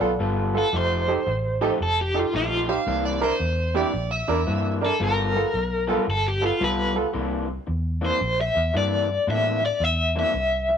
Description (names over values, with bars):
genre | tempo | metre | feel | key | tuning
electric blues shuffle | 112 BPM | 4/4 | swing 65% on 8ths | C mixolydian | A4 = 436 Hz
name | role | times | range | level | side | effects
overdriven semi-hollow guitar | melody | 0.0-10.8 s | F4 to E5 | -23 LUFS | left 1 dB | tremolo
bright upright piano | accompaniment | 0.0-7.0 s | B3 to C5 | -26 LUFS | right 4 dB | none
electric guitar through a small old amp | riff | 0.0-10.7 s | C3 to A4 | -29 LUFS | left 3 dB | none
vintage muted fingered electric bass | bass | 0.0-10.8 s | F1 to A2 | -27 LUFS | equal | none
overdriven slide guitar | second line | 2.7-4.7 s | C5 to F5 | -28 LUFS | right 2 dB | none
room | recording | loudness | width
light reverb | rough rehearsal-room recording, tube saturation, nothing above 10.9 kHz | -21 LUFS | side -8 dB against mid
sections
0.0-7.1 A section; 7.1-10.8 B section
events
overdriven electric guitar solo 7.1-10.8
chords
0.0 G9; 0.7 F9; 2.9 C9; 5.0 G9; 7.1 C9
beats
0.19 | 0.73 1.26 1.80 2.33 | 2.87 3.40 3.94 4.47 | 5.00 5.54 6.07 6.61 | 7.14 7.67 8.21 8.74 | 9.28 9.81 10.34